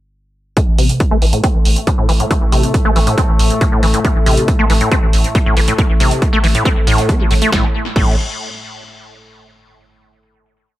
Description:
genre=driving peak-time techno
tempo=138 BPM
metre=4/4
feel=straight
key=A minor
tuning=A4 = 440 Hz
part: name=acid bass, saw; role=riff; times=0.6-8.2 s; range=A2 to C4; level=-17 LUFS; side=equal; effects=analog chorus, sidechain pumping, tape echo
part: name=analog drone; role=drone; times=1.5-7.6 s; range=A2 to A3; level=-23 LUFS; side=left 1 dB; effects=chorus, sidechain pumping
part: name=electronic kick drum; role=drums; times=0.6-8.0 s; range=none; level=-15 LUFS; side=equal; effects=overdrive
part: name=punchy analog drum machine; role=drums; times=0.6-8.0 s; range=crash cymbal, hi-hat, snare drum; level=-23 LUFS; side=right 2 dB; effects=sidechain pumping on hats, sidechain pumping on cymbals, tape echo
part: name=saturated sub bass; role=bass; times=0.7-8.2 s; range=A1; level=-16 LUFS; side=equal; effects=overdrive, sidechain pumping, low-pass filter
room=light reverb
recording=echo-heavy mix, faint mains hum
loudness=-11 LUFS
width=side -15 dB against mid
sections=0.6-7.5 groove; 7.5-9.3 final note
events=filter sweep on acid bass 0.6-7.5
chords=0.6 Am; 7.5 N.C.

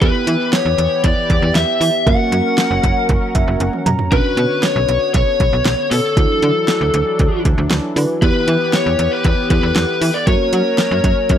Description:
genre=synth-pop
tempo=117 BPM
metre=4/4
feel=straight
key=unclear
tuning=A4 = 438 Hz
part: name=lead guitar through a small cranked amp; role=melody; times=0.0-11.4 s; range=A4 to F#5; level=-18 LUFS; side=left 3 dB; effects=overdrive, tape echo
part: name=muted felt-like synth keys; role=accompaniment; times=0.0-11.4 s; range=A#3 to A#5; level=-22 LUFS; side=right 4 dB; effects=chorus
part: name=chorused pulse-width pad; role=sustained chords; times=0.0-11.4 s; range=D3 to C#5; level=-25 LUFS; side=equal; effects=none
part: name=slap-like FM bass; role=bass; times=0.0-11.4 s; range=F#1 to F#3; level=-18 LUFS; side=right 1 dB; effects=none
part: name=deep house drum kit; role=drums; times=0.0-11.4 s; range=hi-hat, kick drum, snare drum, toms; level=-18 LUFS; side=right 1 dB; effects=none
room=light reverb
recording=dry, gritty hardware recording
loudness=-13 LUFS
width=side -9 dB against mid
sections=0.0-11.4 A section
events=synth keys fill 3.1-4.1; drum fill 3.6-4.1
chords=0.0 Em; 2.1 F#; 4.1 Bmadd9; 6.2 Dadd9; 8.2 Em; 10.3 F#

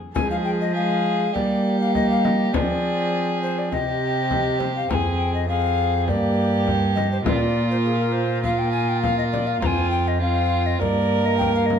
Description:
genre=classical, renaissance-style consort dance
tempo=102 BPM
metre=4/4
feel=straight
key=F dorian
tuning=A4 = 440 Hz
part: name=hollow alto recorder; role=melody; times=0.1-11.8 s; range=Ab4 to Bb5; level=-25 LUFS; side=left 5 dB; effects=none
part: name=dark violin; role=second line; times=0.1-11.8 s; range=F4 to Bb4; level=-26 LUFS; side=right 5 dB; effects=none
part: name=warm trombone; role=accompaniment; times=0.2-11.8 s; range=Ab3 to C4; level=-26 LUFS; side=left 1 dB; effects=none
part: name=warm cello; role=bass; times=0.2-11.8 s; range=F2 to G3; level=-24 LUFS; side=right 2 dB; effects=none
part: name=frame drum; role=percussion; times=0.2-11.8 s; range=none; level=-28 LUFS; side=left 4 dB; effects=none
room=wet stone room reverb, RT60 1.3 s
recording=dark, warm production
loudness=-19 LUFS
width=side -8 dB against mid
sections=0.2-11.8 A section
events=none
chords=0.2 Fm; 1.4 Gm; 2.5 Fm; 3.7 Cm; 4.9 Fm; 6.1 Gm; 7.3 Bb5; 9.6 F5; 10.8 Gm

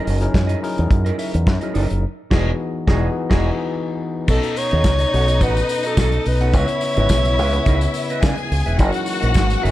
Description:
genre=disco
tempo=106 BPM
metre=4/4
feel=straight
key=unclear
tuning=A4 = 440 Hz
part: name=mellow electric guitar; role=accompaniment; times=0.0-9.7 s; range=E4 to F#5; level=-29 LUFS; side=right 6 dB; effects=none
part: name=tine electric piano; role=accompaniment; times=0.0-9.7 s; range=B2 to B4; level=-25 LUFS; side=left 3 dB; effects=none
part: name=fingered electric bass with an envelope filter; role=bass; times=0.1-9.7 s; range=E1 to C#3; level=-19 LUFS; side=equal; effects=none
part: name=warm soul drum kit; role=drums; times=0.1-9.7 s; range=crash cymbal, hi-hat, kick drum, snare drum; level=-20 LUFS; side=equal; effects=none
part: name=breathy alto saxophone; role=melody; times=4.3-8.2 s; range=A4 to C#5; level=-21 LUFS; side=equal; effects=none
part: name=clear studio string section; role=second line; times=4.3-9.7 s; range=D#4 to G#5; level=-25 LUFS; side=left 3 dB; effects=none
part: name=tambourine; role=percussion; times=4.3-9.6 s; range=none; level=-36 LUFS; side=left 7 dB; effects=none
part: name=mellow French horn section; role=sustained chords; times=8.8-9.7 s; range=E3 to F#4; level=-28 LUFS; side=right 2 dB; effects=stereo widening
room=light reverb, studio ambience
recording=dark, warm production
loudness=-16 LUFS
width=side -15 dB against mid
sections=0.0-4.3 A section; 4.3-9.7 B section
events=band accent 2.0-4.3; tine electric piano fill 3.4-4.3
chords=0.0 F#13; 2.0 Emaj9; 4.3 B7; 6.5 C#m9; 8.8 F#13

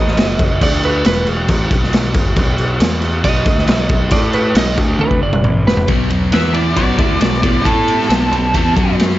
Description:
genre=blues rock power trio and southern rock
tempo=136 BPM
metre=4/4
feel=straight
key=unclear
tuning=A4 = 440 Hz
part: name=lightly driven lead guitar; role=second line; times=0.0-8.1 s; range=E4 to D#5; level=-21 LUFS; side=right 3 dB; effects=plate reverb
part: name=fuzz picked electric bass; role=bass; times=0.0-9.2 s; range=E1 to A2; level=-18 LUFS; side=equal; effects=overdrive
part: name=raw garage drum kit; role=drums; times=0.1-9.1 s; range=crash cymbal, kick drum, ride cymbal, snare drum, toms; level=-15 LUFS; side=equal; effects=none
part: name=thick fuzz guitar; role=riff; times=5.9-9.2 s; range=B2 to A4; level=-19 LUFS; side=left 1 dB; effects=distortion
part: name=octave-fuzz lead guitar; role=melody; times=6.3-8.9 s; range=A4 to E5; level=-18 LUFS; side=equal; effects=distortion
room=light reverb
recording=nothing above 7.7 kHz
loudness=-12 LUFS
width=side -15 dB against mid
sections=0.0-5.9 A section; 5.9-9.2 B section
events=lead electric guitar solo 0.0-5.9; drum fill 5.0-5.9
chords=0.0 F#m6; 0.6 Bm/D; 1.1 Esus4; 1.7 N.C.; 3.2 B; 4.1 Asus24; 4.6 B; 4.8 Bm/D; 5.2 E9sus4; 5.9 B5; 6.3 E5; 6.8 B5; 7.7 A5; 8.1 B5; 8.8 F#5

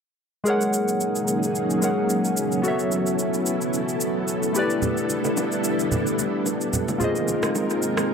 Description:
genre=amapiano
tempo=110 BPM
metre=4/4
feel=swing 55% on 16ths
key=unclear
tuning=A4 = 442 Hz
part: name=warm analog keys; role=accompaniment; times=0.4-8.1 s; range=G#3 to F#5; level=-25 LUFS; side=left 1 dB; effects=chorus
part: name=string machine, cellos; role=sustained chords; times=0.5-8.1 s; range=F#3 to A#4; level=-24 LUFS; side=equal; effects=ensemble chorus
part: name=electronic shaker and rim click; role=drums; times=0.5-8.1 s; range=none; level=-29 LUFS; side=right 1 dB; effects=overdrive, dub echo
part: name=congas and bongos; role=percussion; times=4.8-8.1 s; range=none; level=-30 LUFS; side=right 3 dB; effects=dub echo
part: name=reverse cymbal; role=sound effects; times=8.1 s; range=none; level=barely audible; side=none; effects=none
room=moderate spring reverb, RT60 1.6 s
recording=echo-heavy mix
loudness=-21 LUFS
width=side -6 dB against mid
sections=0.5-8.1 A section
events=none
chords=0.5 G#9sus4; 2.6 B9sus4; 4.6 A9sus4; 7.0 A#9sus4

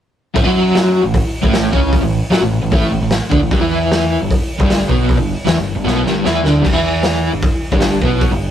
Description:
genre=garage rock duo or trio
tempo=152 BPM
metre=4/4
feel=straight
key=A mixolydian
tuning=A4 = 439 Hz
part: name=crunchy overdriven guitar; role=riff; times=0.3-8.5 s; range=G2 to F#4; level=-16 LUFS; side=equal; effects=tremolo
part: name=growling picked electric bass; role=bass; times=0.4-8.5 s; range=G1 to F#2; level=-20 LUFS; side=equal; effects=overdrive
part: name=raw garage drum kit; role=drums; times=0.4-8.3 s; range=crash cymbal, hi-hat, kick drum, snare drum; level=-17 LUFS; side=equal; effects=none
room=light reverb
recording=rough rehearsal-room recording, tube saturation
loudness=-12 LUFS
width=side -10 dB against mid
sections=0.3-8.5 A section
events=drum fill 5.9-6.6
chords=0.3 A; 3.5 G5

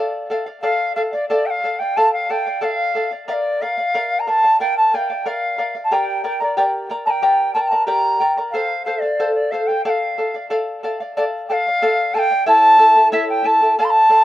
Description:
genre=andean folk, Andean ensemble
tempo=91 BPM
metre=2/4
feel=straight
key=D minor, D harmonic minor from 11.2 s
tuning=A4 = 440 Hz
part: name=large quena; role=melody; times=0.0-14.2 s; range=D5 to C6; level=-16 LUFS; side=equal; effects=none
part: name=charango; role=accompaniment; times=0.0-14.2 s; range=E4 to Bb5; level=-21 LUFS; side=left 1 dB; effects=slapback echo
room=little or no reverb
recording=recorded outdoors, with no room sound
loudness=-15 LUFS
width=side -14 dB against mid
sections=0.6-11.2 A section; 11.2-14.2 B section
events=none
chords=0.0 Dm; 3.3 Bb; 5.9 Gm; 8.5 F; 9.8 Dm; 12.5 A

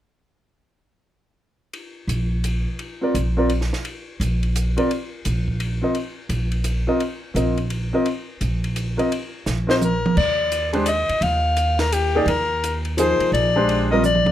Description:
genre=modal jazz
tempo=171 BPM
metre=3/4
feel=swing 64% on 8ths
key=Eb major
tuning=A4 = 444 Hz
part: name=compact cocktail drum kit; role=drums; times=1.7-14.3 s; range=crash cymbal, hi-hat, kick drum, ride cymbal, snare drum, toms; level=-29 LUFS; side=right 2 dB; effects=none
part: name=upright bass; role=bass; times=2.1-14.3 s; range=G1 to Eb2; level=-23 LUFS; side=equal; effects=none
part: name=warm baby grand piano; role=accompaniment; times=3.0-14.0 s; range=F3 to Eb5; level=-21 LUFS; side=equal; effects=none
part: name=breathy soprano saxophone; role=melody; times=9.7-14.3 s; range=G4 to F5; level=-20 LUFS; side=left 3 dB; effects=plate reverb
room=light reverb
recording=none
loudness=-19 LUFS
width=side -12 dB against mid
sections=1.7-10.2 A section; 10.2-14.3 B section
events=drum fill 9.5-10.2, 14.0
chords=1.7 N.C.; 6.0 Bbsus24; 10.2 Ebmaj9

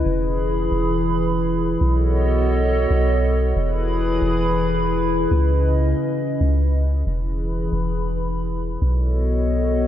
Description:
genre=hip hop, atmospheric cloud-rap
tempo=137 BPM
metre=4/4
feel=half-time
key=E major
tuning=A4 = 442 Hz
part: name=warbly tape-like pad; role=sustained chords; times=0.0-9.9 s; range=C#3 to B5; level=-21 LUFS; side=equal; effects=chorus, built-in reverb
part: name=soft 808-style bass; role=bass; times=0.0-9.9 s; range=E1 to C#2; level=-20 LUFS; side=equal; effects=none
room=light reverb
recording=none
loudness=-18 LUFS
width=side -11 dB against mid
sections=0.0-7.1 A section; 7.1-9.9 B section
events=none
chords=0.1 E; 1.8 B7; 3.6 E; 5.3 C#m7; 7.1 E; 8.8 B7

